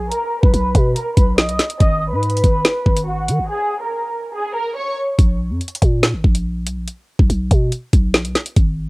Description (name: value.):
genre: hip hop, drill.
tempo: 142 BPM.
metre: 4/4.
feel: half-time.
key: Bb phrygian.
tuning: A4 = 440 Hz.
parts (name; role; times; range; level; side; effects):
warm symphonic violin section; melody; 0.0-4.9 s; Gb4 to D#6; -21 LUFS; equal; low-pass filter, cassette tape, analog delay.
growling 808-style bass; bass; 0.0-8.9 s; Ab1 to Eb3; -20 LUFS; equal; none.
drill drum kit; drums; 0.1-8.7 s; hi-hat, kick drum, snare drum; -14 LUFS; equal; cassette tape.
room: little or no reverb.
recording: home recording on cassette.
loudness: -15 LUFS.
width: side -24 dB against mid.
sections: 0.0-8.9 A section.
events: filter sweep on violin section 0.0-5.2; break 3.5-5.2.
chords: 0.1 Bmaj7(no3); 1.8 Abm; 3.5 Absus2; 5.2 Bb5; 6.9 N.C..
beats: | 0.12 0.54 0.96 1.38 | 1.80 2.23 2.65 3.07 | 3.50 3.92 4.34 4.76 | 5.18 5.61 6.03 6.45 | 6.88 7.30 7.72 8.14 | 8.57.